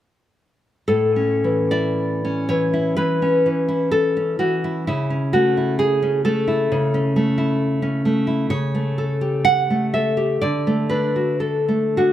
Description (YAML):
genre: romantic piece for solo classical guitar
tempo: 50-68 BPM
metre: 4/4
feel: rubato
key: A major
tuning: A4 = 440 Hz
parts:
  - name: nylon-string guitar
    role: solo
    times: 0.9-12.1 s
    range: A2 to F#5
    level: -17 LUFS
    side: equal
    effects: none
room: moderate recital hall reverb, RT60 1.7 s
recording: none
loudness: -18 LUFS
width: side -12 dB against mid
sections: 0.9-12.1 A section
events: none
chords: 0.9 A; 4.9 A/C#; 8.5 A7/C#; 10.4 D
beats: | 0.88 1.98 2.97 3.92 | 4.86 5.79 6.70 7.60 | 8.51 9.45 10.41 11.41